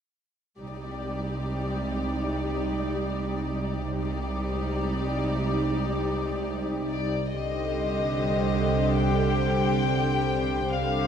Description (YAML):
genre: cinematic, suspense film score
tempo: 72 BPM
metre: 4/4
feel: straight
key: C minor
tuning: A4 = 442 Hz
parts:
  - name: warm symphonic violin section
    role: second line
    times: 0.6-11.1 s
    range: G4 to D5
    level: -34 LUFS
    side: left 4 dB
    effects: none
  - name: warm studio viola section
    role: accompaniment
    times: 0.6-11.1 s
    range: D3 to Eb4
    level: -30 LUFS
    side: equal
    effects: none
  - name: ethereal airy pad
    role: sustained chords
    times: 2.2-11.1 s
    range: C4 to D5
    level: -34 LUFS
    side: left 1 dB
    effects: ensemble chorus, built-in reverb
  - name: rich symphonic double bass section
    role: bass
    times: 0.6-11.1 s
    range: C2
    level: -32 LUFS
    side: right 3 dB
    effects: none
  - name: warm symphonic cello section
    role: bass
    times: 0.6-11.1 s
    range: C3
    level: -32 LUFS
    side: right 3 dB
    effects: none
  - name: warm chamber violin section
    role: melody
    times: 6.9-11.1 s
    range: D5 to G5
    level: -29 LUFS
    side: left 5 dB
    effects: none
room: moderate scoring stage reverb, RT60 1.9 s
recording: dark, warm production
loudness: -25 LUFS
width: side -8 dB against mid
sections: 0.6-7.3 A section; 7.3-11.1 B section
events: none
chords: 0.6 Cmadd9